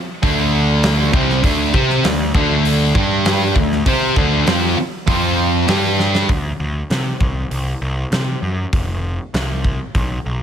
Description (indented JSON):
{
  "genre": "hard rock",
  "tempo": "99 BPM",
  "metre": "4/4",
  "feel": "straight",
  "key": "unclear",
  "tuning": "A4 = 440 Hz",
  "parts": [
    { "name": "sludgy distorted guitar", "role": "riff", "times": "0.2-6.3 s", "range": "C3 to C5", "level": "-19 LUFS", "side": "left 10 dB", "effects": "overdrive" },
    { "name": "sludgy distorted guitar", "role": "riff", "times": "0.2-6.3 s", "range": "C3 to C5", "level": "-18 LUFS", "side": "right 9 dB", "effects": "overdrive" },
    { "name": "fuzz picked electric bass", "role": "bass", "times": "0.2-10.4 s", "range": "F1 to C3", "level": "-20 LUFS", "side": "equal", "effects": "overdrive" },
    { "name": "big rock drum kit", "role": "drums", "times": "0.2-10.1 s", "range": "hi-hat, kick drum, snare drum", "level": "-20 LUFS", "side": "equal", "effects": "none" }
  ],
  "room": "light reverb",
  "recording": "none",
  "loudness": "-14 LUFS",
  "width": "side -8 dB against mid",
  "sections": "0.0-6.3 A section; 6.3-10.4 B section",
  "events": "drum fill 6.0-6.3",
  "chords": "0.0 D5; 3.0 G5; 3.6 D5; 5.1 F5; 5.7 G5; 6.3 Csus2/D; 7.2 N.C.; 8.7 F5"
}